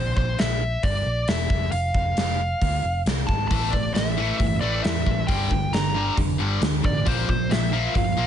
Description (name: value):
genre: hard rock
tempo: 135 BPM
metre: 4/4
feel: straight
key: A phrygian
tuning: A4 = 441 Hz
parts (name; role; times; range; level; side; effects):
- nasal lead guitar with a parked wah; melody; 0.0-8.3 s; C5 to Bb5; -27 LUFS; left 1 dB; overdrive
- hollow-body short-scale picked electric bass; bass; 0.0-8.3 s; E1 to E2; -26 LUFS; equal; none
- gated 80s drum kit; drums; 0.2-8.1 s; hi-hat, kick drum, snare drum; -25 LUFS; equal; none
- distorted electric guitar; riff; 3.5-8.3 s; G2 to Bb3; -28 LUFS; left 11 dB; overdrive
- overdriven electric guitar; riff; 3.5-8.3 s; G2 to Bb3; -29 LUFS; right 11 dB; phaser
room: light reverb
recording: nothing above 10.4 kHz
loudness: -20 LUFS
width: side -9 dB against mid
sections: 0.0-8.3 A section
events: none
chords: 0.0 E7(b5, no3); 1.5 F5; 3.5 A5; 5.3 Gm; 7.1 Bb5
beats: 0.39 0.83 1.28 | 1.73 2.17 2.62 3.06 | 3.51 3.95 4.40 4.84 | 5.29 5.73 6.17 6.62 | 7.07 7.51 7.95